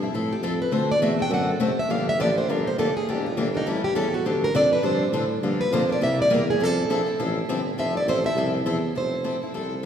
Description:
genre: acoustic string swing (jazz manouche).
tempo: 204 BPM.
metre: 4/4.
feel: swing 59% on 8ths.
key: F major.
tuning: A4 = 437 Hz.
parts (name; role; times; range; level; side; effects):
picked steel-string acoustic guitar; accompaniment; 0.0-9.9 s; C3 to A4; -27 LUFS; left 3 dB; none.
warm tuba; bass; 0.0-9.9 s; E1 to A2; -27 LUFS; right 1 dB; none.
picked plugged-in steel-string acoustic guitar; melody; 0.3-9.8 s; Eb4 to G5; -24 LUFS; right 1 dB; none.
room: wet church reverb, RT60 2.6 s.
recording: recorded in a church or concert hall.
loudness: -21 LUFS.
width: side -8 dB against mid.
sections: 0.0-9.0 A section.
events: steel-string acoustic guitar solo 0.0-9.0.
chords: 0.0 Fmaj7; 0.7 D7; 1.9 Gm7; 3.1 Em7b5; 3.7 A7; 4.2 Dm7; 5.4 Gm7; 6.0 C7; 6.6 Fmaj7.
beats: 0.13 0.42 | 0.72 1.01 1.31 1.60 | 1.90 2.19 2.48 2.78 | 3.07 3.37 3.66 3.95 | 4.25 4.54 4.83 5.13 | 5.42 5.72 6.01 6.30 | 6.60 6.89 7.19 7.48 | 7.78 8.07 8.36 8.66 | 8.95 9.25 9.54 9.84.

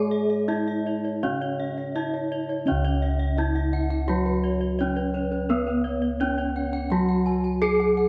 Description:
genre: Javanese gamelan.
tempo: 85 BPM.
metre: 4/4.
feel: straight.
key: C# slendro.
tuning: A4 = 443 Hz.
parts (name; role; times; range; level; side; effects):
gamelan-type bronze metallophone; melody; 0.0-8.1 s; B3-40c to G#4+20c; -29 LUFS; equal; none.
gamelan-type bronze metallophone; accompaniment; 0.0-8.1 s; C#3 to B3-40c; -31 LUFS; equal; none.
gamelan-type bossed gongs; arpeggios; 0.0-8.1 s; B4-40c to G#5+20c; -36 LUFS; equal; none.
gamelan-type bronze metallophone; arpeggios; 0.0-8.1 s; B4-40c to G#5+20c; -40 LUFS; equal; none.
gamelan-type bossed gongs; bass; 0.0-8.1 s; C#2 to B4-40c; -31 LUFS; equal; none.
room: moderate scoring stage reverb, RT60 1.6 s.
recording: small room ambience.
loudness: -25 LUFS.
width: mono.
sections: 0.0-2.7 A section; 2.7-8.1 B section.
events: none.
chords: none.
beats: 0.50 1.24 1.97 | 2.68 3.38 4.09 4.80 | 5.50 6.21 6.92 7.62.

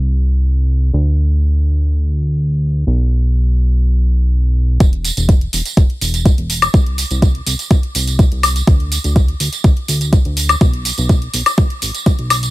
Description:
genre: progressive house.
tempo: 124 BPM.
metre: 4/4.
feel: straight.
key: unclear.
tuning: A4 = 440 Hz.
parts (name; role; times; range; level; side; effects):
fat analog bass; bass; 0.0-12.5 s; E1 to D2; -15 LUFS; equal; sidechain pumping.
electronic hi-hat, tambourine and woodblock; drums; 4.8-12.5 s; none; -18 LUFS; left 1 dB; overdrive.
electronic kick drum; drums; 4.8-12.2 s; none; -11 LUFS; equal; overdrive.
room: little or no reverb.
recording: none.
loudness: -12 LUFS.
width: side -18 dB against mid.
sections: 0.0-4.8 A section; 4.8-12.5 B section.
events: build-up 4.8-12.5.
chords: none.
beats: 0.45 | 0.93 1.42 1.90 2.38 | 2.87 3.35 3.84 4.32 | 4.80 5.29 5.77 6.26 | 6.74 7.22 7.71 8.19 | 8.68 9.16 9.64 10.13 | 10.61 11.10 11.58 12.06.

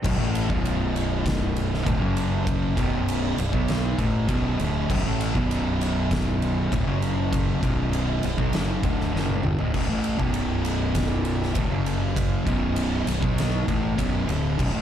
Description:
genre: stoner and doom metal.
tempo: 99 BPM.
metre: 4/4.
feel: straight.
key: B minor.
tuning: A4 = 441 Hz.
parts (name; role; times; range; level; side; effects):
fuzz guitar; riff; 0.0-14.8 s; B1 to B3; -25 LUFS; equal; distortion.
fuzz fingered electric bass; bass; 0.0-14.8 s; B0 to B1; -28 LUFS; equal; overdrive.
oversized low-tuned drum kit; drums; 0.0-14.7 s; crash cymbal, kick drum, ride cymbal, snare drum, toms; -27 LUFS; equal; none.
room: light reverb, studio reverb.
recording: none.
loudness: -22 LUFS.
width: side -10 dB against mid.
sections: 0.0-9.7 A section; 9.7-14.8 B section.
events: drum fill 9.1-9.7.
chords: 0.0 Bm; 2.0 F#5; 2.8 Bm; 6.9 F#5; 7.6 Bm; 11.7 F#5; 12.5 Bm.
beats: | 0.04 0.65 1.25 1.86 | 2.47 3.07 3.68 4.29 | 4.89 5.50 6.10 6.71 | 7.31 7.92 8.53 9.13 | 9.74 10.34 10.95 11.55 | 12.16 12.77 13.37 13.98 | 14.58.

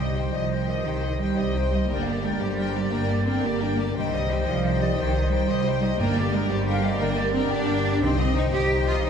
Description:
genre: cinematic.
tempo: 117 BPM (dotted quarters).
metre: 12/8.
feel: straight.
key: C minor.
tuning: A4 = 441 Hz.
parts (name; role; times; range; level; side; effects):
warm symphonic violin section; melody; 0.0-9.1 s; D5 to G5; -34 LUFS; left 6 dB; none.
clear studio violin section; second line; 0.0-9.1 s; G4 to Eb5; -35 LUFS; left 3 dB; none.
mellow clarinet; second line; 0.0-9.1 s; G4 to Eb5; -36 LUFS; right 1 dB; none.
mellow flute section; second line; 0.0-9.1 s; C5 to F5; -32 LUFS; left 3 dB; none.
dark studio viola section; accompaniment; 0.0-9.1 s; D4 to G4; -36 LUFS; right 2 dB; none.
warm French horn section; sustained chords; 0.0-9.1 s; G4 to C5; -33 LUFS; left 3 dB; none.
warm trombone section; sustained chords; 0.0-9.1 s; D3 to G3; -34 LUFS; equal; none.
concert harp; arpeggios; 0.0-9.1 s; G2 to G4; -34 LUFS; left 5 dB; none.
rich symphonic cello section; bass; 0.0-9.1 s; Eb3 to G4; -27 LUFS; right 3 dB; none.
warm symphonic double bass section; bass; 0.0-9.1 s; G1 to C2; -27 LUFS; right 1 dB; none.
timpani; percussion; 6.0-8.5 s; G2 to C3; -32 LUFS; left 2 dB; none.
room: wet scoring stage reverb, RT60 1.7 s.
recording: heard from further back in the room.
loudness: -22 LUFS.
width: side -7 dB against mid.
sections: 0.0-9.1 A section.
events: none.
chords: 0.0 Cm; 1.9 Gm; 4.0 Cm; 6.0 Gm; 8.0 Cm.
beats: 0.35 0.87 1.38 | 1.90 2.42 2.93 3.44 | 3.96 4.47 4.98 5.49 | 6.00 6.51 7.01 7.52 | 8.03 8.54 9.05.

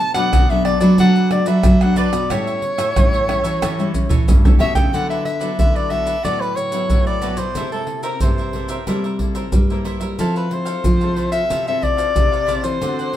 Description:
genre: samba and choro.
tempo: 91 BPM.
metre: 4/4.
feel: straight.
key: D major.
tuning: A4 = 441 Hz.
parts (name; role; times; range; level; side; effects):
clear soprano saxophone; melody; 0.0-13.2 s; A4 to A5; -21 LUFS; left 2 dB; none.
cavaquinho; accompaniment; 0.0-13.2 s; D4 to F#5; -30 LUFS; right 5 dB; none.
nylon-string guitar; accompaniment; 0.0-13.2 s; F#2 to A4; -26 LUFS; left 3 dB; none.
nylon-string guitar; bass; 0.1-13.2 s; G2 to G3; -21 LUFS; right 1 dB; none.
maracas, pandeiro, tamborim and surdo; percussion; 0.1-13.2 s; none; -18 LUFS; equal; none.
room: moderate studio reverb, RT60 0.8 s.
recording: band playing live in one room.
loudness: -15 LUFS.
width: side -12 dB against mid.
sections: 0.0-4.9 A section; 4.9-13.2 B section.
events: drum fill 3.6-4.9.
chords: 0.0 Bm7; 2.3 A7; 4.9 D69; 7.6 C6; 10.2 Fmaj7.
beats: 0.34 0.99 1.65 | 2.31 2.97 3.62 4.28 | 4.94 5.59 6.25 6.91 | 7.57 8.22 8.88 9.54 | 10.19 10.85 11.50 12.16 | 12.82.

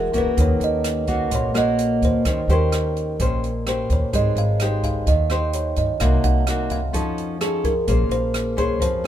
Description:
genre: bossa nova.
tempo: 128 BPM.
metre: 4/4.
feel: straight.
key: unclear.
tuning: A4 = 438 Hz.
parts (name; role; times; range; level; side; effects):
kalimba; melody; 0.0-9.1 s; Ab4 to Gb5; -24 LUFS; right 2 dB; none.
nylon-string guitar; accompaniment; 0.0-9.1 s; Bb2 to C5; -24 LUFS; left 2 dB; none.
upright bass; bass; 0.0-9.1 s; E1 to G2; -22 LUFS; equal; none.
open jazz drum kit; drums; 0.1-8.9 s; hi-hat, kick drum, rim click; -27 LUFS; right 1 dB; none.
room: little or no reverb.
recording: minimal, uncompressed stereo recording.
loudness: -18 LUFS.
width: side -11 dB against mid.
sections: 0.0-9.1 A section.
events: none.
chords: 0.4 Ebm7; 2.2 Eb6; 4.1 Abmaj7; 6.0 Cm7b5; 6.9 Faug7; 7.9 Bbm9.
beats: | 0.38 0.84 1.31 1.78 | 2.25 2.72 3.19 3.65 | 4.12 4.59 5.06 5.53 | 6.00 6.47 6.94 7.40 | 7.87 8.34 8.81.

